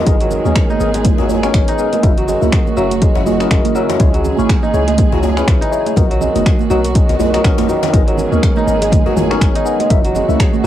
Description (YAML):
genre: afro house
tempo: 122 BPM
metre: 4/4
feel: swing 57% on 16ths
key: G# minor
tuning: A4 = 441 Hz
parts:
  - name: muted symphonic string section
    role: sustained chords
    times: 0.0-10.7 s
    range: C#3 to A#4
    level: -23 LUFS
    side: right 1 dB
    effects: sidechain pumping
  - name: kora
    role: arpeggios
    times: 0.0-10.7 s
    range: D#3 to G#4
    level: -18 LUFS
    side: right 1 dB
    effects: sidechain pumping, tape echo
  - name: tine electric piano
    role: stabs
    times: 0.0-10.7 s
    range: B3 to E5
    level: -22 LUFS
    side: left 10 dB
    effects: phaser, sidechain pumping, tape echo
  - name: warm 808-style bass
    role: bass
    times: 0.1-10.7 s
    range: F#1 to D#2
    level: -21 LUFS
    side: equal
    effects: sidechain pumping
  - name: afro-pop drum kit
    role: drums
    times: 0.1-10.7 s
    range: finger snaps, hi-hat, shaker, toms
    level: -24 LUFS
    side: equal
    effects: cassette tape
  - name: electronic kick drum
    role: drums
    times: 0.1-10.5 s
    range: none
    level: -14 LUFS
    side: equal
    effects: overdrive, cassette tape
  - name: djembe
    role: percussion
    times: 0.1-10.4 s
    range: none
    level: -25 LUFS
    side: left 12 dB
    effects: none
  - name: congas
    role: percussion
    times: 0.3-10.6 s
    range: none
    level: -21 LUFS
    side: right 13 dB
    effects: none
room: light reverb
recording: home recording on cassette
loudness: -11 LUFS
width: side -12 dB against mid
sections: 0.0-10.7 A section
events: none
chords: 0.1 G#madd9; 2.0 F#7; 4.0 C#m; 6.0 Bmaj7; 7.9 G#madd9; 9.9 F#7